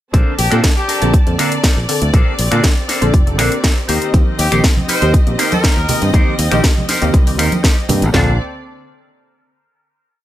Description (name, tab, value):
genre	filtered disco house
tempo	120 BPM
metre	4/4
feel	straight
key	Bb major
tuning	A4 = 438 Hz
part	funky polysynth comp	accompaniment	0.1-8.3 s	D3 to Bb4	-21 LUFS	right 1 dB	chorus, phaser, sidechain pumping
part	dark studio string section	sustained chords	0.1-8.4 s	C4 to A5	-24 LUFS	left 1 dB	sidechain pumping
part	electric guitar with an envelope filter	riff	0.1-8.4 s	D4 to D5	-22 LUFS	left 1 dB	sidechain pumping
part	fingered electric bass	bass	0.1-8.4 s	F1 to Bb2	-17 LUFS	equal	sidechain pumping
part	house drum kit	drums	0.1-8.3 s	kick drum, snare drum, toms	-12 LUFS	equal	none
part	house drum kit	drums	0.1-8.1 s	finger snaps, hi-hat, snare drum	-19 LUFS	equal	sidechain pumping on hats
part	bright horn section	melody	0.4-1.1, 4.4-6.0 s	G4 to C5	-22 LUFS	left 2 dB	sidechain pumping
part	congas and tambourine	percussion	4.1-8.1 s	none	-23 LUFS	right 2 dB	sidechain pumping on perc
room	little or no reverb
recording	none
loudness	-12 LUFS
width	side -13 dB against mid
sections	0.1-8.1 drop; 8.1-10.1 final chord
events	drop 0.1-8.1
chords	0.1 Bbmaj9; 3.9 Eb6; 8.1 Bbmaj9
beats	| 0.14 0.64 1.14 1.64 | 2.14 2.64 3.14 3.64 | 4.14 4.64 5.14 5.64 | 6.14 6.64 7.14 7.64 | 8.14